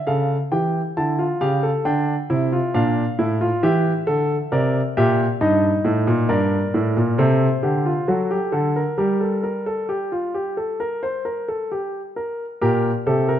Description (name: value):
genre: classical, baroque-style 3-part fugue for grand piano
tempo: 67 BPM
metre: 4/4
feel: straight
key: G minor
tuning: A4 = 440 Hz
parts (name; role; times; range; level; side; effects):
- warm grand piano; solo; 0.0-13.4 s; G2 to A5; -18 LUFS; equal; none
room: moderate recital hall reverb, RT60 1.6 s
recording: dark, warm production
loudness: -18 LUFS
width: side -10 dB against mid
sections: 0.0-12.6 A section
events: none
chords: 0.1 A7/C#; 1.9 Dm; 3.6 Edim; 5.4 Eb/G; 7.2 F69/C; 8.1 D/F#; 9.0 Gm; 12.6 Gm/Bb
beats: 0.08 0.97 | 1.86 2.75 3.64 4.53 | 5.41 6.30 7.19 8.08 | 8.99 9.89 10.80 11.71 | 12.62